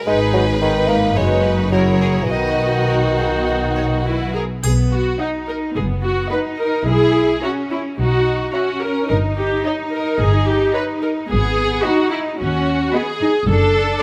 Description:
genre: cinematic, playful, whimsical film cue.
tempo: 108 BPM.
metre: 4/4.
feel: straight.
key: B major.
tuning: A4 = 441 Hz.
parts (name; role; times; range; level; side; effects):
rich studio violin section; melody; 0.0-13.3 s; F#4 to B5; -29 LUFS; equal; none.
warm studio violin section; second line; 0.1-13.3 s; F#4 to F#5; -27 LUFS; equal; none.
mellow bassoon; accompaniment; 0.1-4.3 s; D#3 to A#3; -23 LUFS; equal; none.
rich studio viola section; accompaniment; 0.1-14.0 s; D#4 to B4; -23 LUFS; equal; none.
warm studio cello section; bass; 0.1-14.0 s; F#2 to E4; -24 LUFS; equal; none.
warm studio double bass section; bass; 0.1-13.9 s; F#1 to D#2; -23 LUFS; equal; none.
triangle; percussion; 4.6-5.7 s; none; -32 LUFS; equal; none.
room: light reverb.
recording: close, detailed microphones.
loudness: -18 LUFS.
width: mono.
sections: 0.0-4.6 A section; 4.6-14.0 A section.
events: none.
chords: 0.1 G#m; 1.2 B/F#; 1.7 F#9; 2.3 B; 6.9 F#7/B; 9.1 D#7/G; 11.3 G#m7; 13.5 D/F#.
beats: | 0.07 0.61 1.16 1.73 | 2.31 2.90 3.48 4.06 | 4.64 5.20 5.75 6.31 | 6.86 7.43 7.99 8.54 | 9.09 9.65 10.20 10.75 | 11.29 11.84 12.39 12.93 | 13.47.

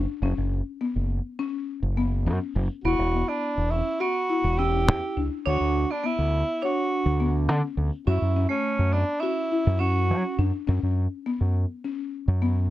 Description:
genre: progressive instrumental, progressive.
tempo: 207 BPM (eighths).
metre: 9/8.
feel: straight.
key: unclear.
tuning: A4 = 438 Hz.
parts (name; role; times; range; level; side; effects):
buzzing marimba with soft mallets; arpeggios; 0.0-12.6 s; B3 to C#5; -30 LUFS; left 6 dB; none.
growling fingered electric bass; bass; 0.0-12.7 s; E1 to F#3; -23 LUFS; equal; overdrive.
mellow tenor saxophone; melody; 2.8-10.5 s; C#4 to G4; -27 LUFS; right 1 dB; none.
vibraphone with hard mallets; second line; 2.9-10.5 s; A3 to E4; -32 LUFS; right 9 dB; slapback echo.
room: moderate studio reverb, RT60 0.5 s.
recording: dark, warm production.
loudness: -23 LUFS.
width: side -14 dB against mid.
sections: 0.0-12.7 A section.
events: none.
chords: 0.0 F#5; 2.8 Emadd9; 5.5 Bm/D; 8.1 F#5.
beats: | 0.22 0.52 0.81 1.10 1.39 1.68 1.97 2.26 2.55 | 2.84 3.13 3.42 3.71 4.00 4.29 4.58 4.87 5.17 | 5.46 5.75 6.04 6.33 6.62 6.91 7.20 7.49 7.78 | 8.07 8.36 8.65 8.94 9.23 9.52 9.81 10.10 10.39 | 10.68 10.97 11.26 11.55 11.84 12.13 12.42.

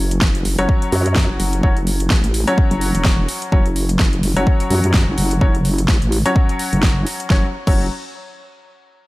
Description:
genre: bass house.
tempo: 127 BPM.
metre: 4/4.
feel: swing 57% on 16ths.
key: F# minor.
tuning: A4 = 440 Hz.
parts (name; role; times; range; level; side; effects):
vowel-sweep wobble bass; bass; 0.0-7.9 s; E1 to F#2; -18 LUFS; equal; chorus, tube saturation, sidechain pumping.
big-room dance drum kit; drums; 0.1-7.8 s; crash cymbal, hi-hat, snare drum; -23 LUFS; equal; overdrive, small room ambience.
electronic kick drum; drums; 0.2-7.8 s; none; -16 LUFS; equal; overdrive, small room ambience.
clear concert grand piano; stabs; 0.6-7.8 s; F#3 to C#5; -22 LUFS; left 2 dB; sidechain pumping, low-pass filter, dub echo.
room: little or no reverb.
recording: none.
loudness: -14 LUFS.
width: side -20 dB against mid.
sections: 0.0-7.3 A section; 7.3-9.1 B section.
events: filter sweep on wobble bass 0.0-7.3.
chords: 0.0 F#5.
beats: 0.21 0.69 1.16 | 1.63 2.10 2.58 3.05 | 3.52 4.00 4.47 4.94 | 5.41 5.88 6.36 6.83 | 7.30 7.77.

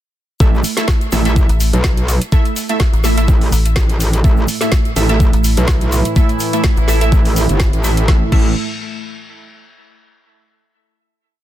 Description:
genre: bass house.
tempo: 125 BPM.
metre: 4/4.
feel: swing 54% on 16ths.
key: unclear.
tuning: A4 = 440 Hz.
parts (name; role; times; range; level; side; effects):
orchestra-hit-like synth stab; stabs; 0.4-8.5 s; A3 to E5; -21 LUFS; right 3 dB; built-in reverb, sidechain pumping, ping-pong delay.
metallic wobble bass; bass; 0.4-8.5 s; G1 to B1; -16 LUFS; equal; distortion, chorus, tube saturation, sidechain pumping.
electronic kick drum; drums; 0.4-8.4 s; none; -13 LUFS; equal; none.
egg shaker; percussion; 0.4-8.1 s; none; -31 LUFS; left 6 dB; none.
garage drum kit; drums; 0.6-8.4 s; crash cymbal, hi-hat, snare drum; -23 LUFS; equal; none.
metallic FM bass; bass; 1.5-7.1 s; A1; -14 LUFS; equal; sidechain pumping.
sweeping resonant pad; sustained chords; 4.2-8.3 s; A2 to E4; -23 LUFS; right 2 dB; chorus, sidechain pumping.
room: digital ambience.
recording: dense, heavily limited modern master.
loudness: -12 LUFS.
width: side -13 dB against mid.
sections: 0.4-8.1 drop; 8.1-10.0 final chord.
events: drop 0.4-8.1.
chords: 0.4 A5.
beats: | 0.40 0.88 1.36 1.84 | 2.32 2.80 3.28 3.76 | 4.24 4.72 5.20 5.68 | 6.16 6.64 7.12 7.60 | 8.08.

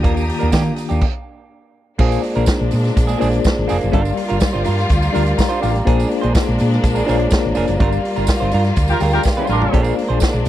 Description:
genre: disco.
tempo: 124 BPM.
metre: 4/4.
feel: straight.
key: unclear.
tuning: A4 = 443 Hz.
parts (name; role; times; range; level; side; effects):
mellow tine electric piano; accompaniment; 0.0-10.5 s; Eb3 to D6; -22 LUFS; left 5 dB; medium stereo tremolo.
semi-hollow electric guitar; accompaniment; 0.0-10.4 s; Bb3 to C5; -24 LUFS; right 7 dB; spring reverb.
clear studio string section; sustained chords; 0.0-10.5 s; G3 to Eb6; -24 LUFS; equal; none.
hollow-body short-scale fingered electric bass; bass; 0.0-10.5 s; F1 to Eb3; -19 LUFS; equal; none.
vintage drum kit; drums; 0.0-10.5 s; crash cymbal, hi-hat, kick drum, snare drum, toms; -18 LUFS; equal; none.
tambourine; percussion; 0.2-10.5 s; none; -36 LUFS; right 18 dB; none.
clear horn section; stabs; 8.9-9.8 s; D4 to Bb4; -19 LUFS; right 2 dB; none.
room: little or no reverb.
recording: dry, close 1970s-style studio recording.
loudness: -14 LUFS.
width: side -13 dB against mid.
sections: 0.0-2.0 A section; 2.0-10.5 B section.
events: stop 1.0-2.0; band accent 7.8-9.7; tine electric piano fill 8.8-9.7; drum fill 9.3-9.7.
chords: 0.0 Ebmaj7; 2.0 Bb7; 3.9 Gm7; 5.9 Bb7; 7.8 Gm7; 9.7 Bb7.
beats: | 0.05 0.53 1.02 1.51 | 1.99 2.48 2.96 3.45 | 3.93 4.42 4.90 5.38 | 5.87 6.35 6.83 7.32 | 7.80 8.28 8.77 9.25 | 9.73 10.22.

